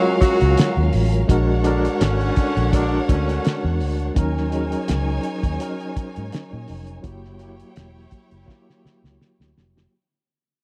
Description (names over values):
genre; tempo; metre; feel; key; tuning
lush 1970s-style soul; 83 BPM; 4/4; swing 54% on 16ths; unclear; A4 = 440 Hz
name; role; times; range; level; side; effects
warm studio violin section; second line; 0.0-9.9 s; C#4 to G#5; -32 LUFS; equal; none
tine electric piano; accompaniment; 0.0-9.9 s; F#3 to C#5; -26 LUFS; equal; fast tremolo
warm horn section; stabs; 0.0-3.8 s; D3 to F#4; -27 LUFS; equal; none
vintage muted fingered electric bass; bass; 0.2-9.9 s; E1 to A#2; -24 LUFS; equal; none
cloth-damped thuddy drum kit; drums; 0.2-9.9 s; hi-hat, kick drum, snare drum; -23 LUFS; equal; none
room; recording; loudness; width
small room ambience; dry, close 1970s-style studio recording; -20 LUFS; mono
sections
0.0-9.9 A section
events
fade-out 0.0-9.9; drum fill 8.5-9.9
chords
0.0 F#maj9; 1.3 A#7alt; 4.2 D#m7; 7.0 F#7b9